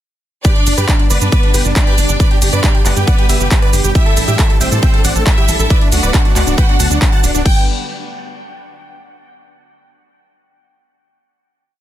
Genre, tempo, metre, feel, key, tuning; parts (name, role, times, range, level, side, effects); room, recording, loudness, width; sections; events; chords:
uplifting trance; 137 BPM; 4/4; straight; G major; A4 = 440 Hz
big supersaw lead; melody; 0.4-7.6 s; D4 to A5; -21 LUFS; right 1 dB; sidechain pumping, dub echo
clear studio violin section; second line; 0.4-7.6 s; B3 to G5; -21 LUFS; right 1 dB; dub echo
lush unison pad; sustained chords; 0.4-7.7 s; B2 to B4; -25 LUFS; equal; chorus, sidechain pumping
electronic kick drum; drums; 0.4-7.5 s; -12 LUFS; equal
punchy analog drum machine; drums; 0.4-7.5 s; crash cymbal, handclaps, hi-hat, shaker; -20 LUFS; right 1 dB; sidechain pumping on hats, sidechain pumping on perc, sidechain pumping on cymbals
tight sequencer bass; bass; 0.7-7.7 s; D1 to A2; -16 LUFS; equal; sidechain pumping
digital ambience; dense, heavily limited modern master; -10 LUFS; side -12 dB against mid
0.4-7.5 drop; 7.5-9.2 final chord
drop 0.4-7.5
0.4 G; 4.0 A7sus4; 5.7 D6; 7.5 G